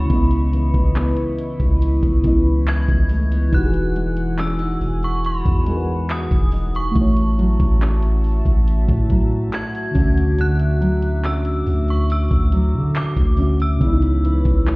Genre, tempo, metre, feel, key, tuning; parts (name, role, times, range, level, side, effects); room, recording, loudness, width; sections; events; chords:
contemporary R&B; 70 BPM; 4/4; straight; A4 = 440 Hz
synth chime; melody; 0.0-14.8 s; B5 to G#6; -29 LUFS; equal; ensemble chorus, digital delay
mellow FM electric piano; accompaniment; 0.0-14.8 s; C#3 to E5; -24 LUFS; equal; chorus, phaser
chorused pulse-width pad; sustained chords; 0.0-14.8 s; E3 to D6; -30 LUFS; equal
nylon-string guitar; arpeggios; 0.0-14.8 s; A2 to D#4; -26 LUFS; equal
long sustained 808-style bass; bass; 0.0-14.8 s; E1 to D3; -19 LUFS; equal
smooth R&B drum kit; drums; 0.1-14.8 s; handclaps, hi-hat, kick drum; -18 LUFS; equal
little or no reverb; heard muffled through a wall, stone room reverb, EQ; -16 LUFS; side -24 dB against mid
0.0-14.8 A section
0.1 C#m9; 3.5 Emaj9; 7.0 A6; 10.0 Dmaj9; 13.8 C#m9